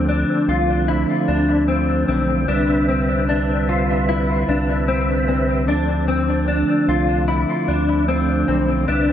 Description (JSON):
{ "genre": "dream pop", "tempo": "75 BPM", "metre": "4/4", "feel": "straight", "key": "unclear", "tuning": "A4 = 440 Hz", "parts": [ { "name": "mellow tonewheel organ", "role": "sustained chords", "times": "0.0-9.1 s", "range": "D3 to E5", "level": "-21 LUFS", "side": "right 2 dB", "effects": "chorus vibrato, slow rotary speaker" }, { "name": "mellow electric guitar", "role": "arpeggios", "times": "0.0-9.1 s", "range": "C4 to F4", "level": "-20 LUFS", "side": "left 2 dB", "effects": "ensemble chorus, dub echo" }, { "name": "round analog bass", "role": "bass", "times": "0.0-9.1 s", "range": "B1 to D2", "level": "-22 LUFS", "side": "equal", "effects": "none" } ], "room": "wet spring reverb, RT60 1.1 s, digital ambience", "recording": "echo-heavy mix", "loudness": "-16 LUFS", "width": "side -10 dB against mid", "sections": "0.0-9.1 A section", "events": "none", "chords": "0.0 Dm7; 2.5 Cmaj9; 5.7 Dm7", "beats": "0.08 0.88 1.68 | 2.48 3.28 4.08 4.88 | 5.68 6.48 7.28 8.08 | 8.88" }